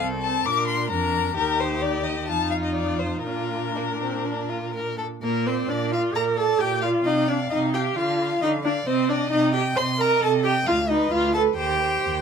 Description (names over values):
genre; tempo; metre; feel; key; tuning
quick classical-period movement for string quartet; 132 BPM; 4/4; rubato; Bb major; A4 = 437 Hz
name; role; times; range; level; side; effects
rich violin; melody; 0.0-12.2 s; Bb4 to D6; -29 LUFS; left 8 dB; none
rich violin; second line; 0.0-12.2 s; Bb3 to C6; -28 LUFS; left 2 dB; none
rich viola; accompaniment; 0.0-12.2 s; Bb3 to C5; -24 LUFS; right 2 dB; none
warm cello; bass; 0.0-12.2 s; C2 to D3; -28 LUFS; right 4 dB; none
room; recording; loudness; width
light reverb; minimal, uncompressed stereo recording; -21 LUFS; side -6 dB against mid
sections
0.0-5.2 A section; 5.2-12.2 A section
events
none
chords
0.5 Bb; 1.4 Ebmaj7; 2.3 F7; 3.3 Bb; 7.0 F5/C; 8.0 Dm; 8.9 Cm; 10.7 Dm6; 11.6 Cm/Eb